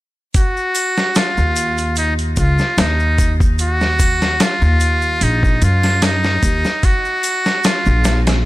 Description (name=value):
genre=trip hop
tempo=74 BPM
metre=4/4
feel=swing 54% on 16ths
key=Eb minor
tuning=A4 = 443 Hz
part: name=dusty soul sampler-style drum kit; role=drums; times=0.3-8.4 s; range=hi-hat, kick drum, snare drum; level=-17 LUFS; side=equal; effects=studio reverb
part: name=trumpet with metal mute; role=melody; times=0.4-8.2 s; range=Eb4 to Gb4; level=-18 LUFS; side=equal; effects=tape echo
part: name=tube shaker and triangle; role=percussion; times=0.4-8.4 s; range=none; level=-30 LUFS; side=left 5 dB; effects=none
part: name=upright bass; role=bass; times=1.4-8.5 s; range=Bb1 to Gb2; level=-16 LUFS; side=equal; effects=none
room=little or no reverb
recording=none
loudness=-13 LUFS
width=side -17 dB against mid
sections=0.3-8.5 A section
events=none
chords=0.3 Ebm; 6.8 Bb5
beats=| 0.35 1.16 1.97 2.78 | 3.59 4.40 5.21 6.02 | 6.83 7.64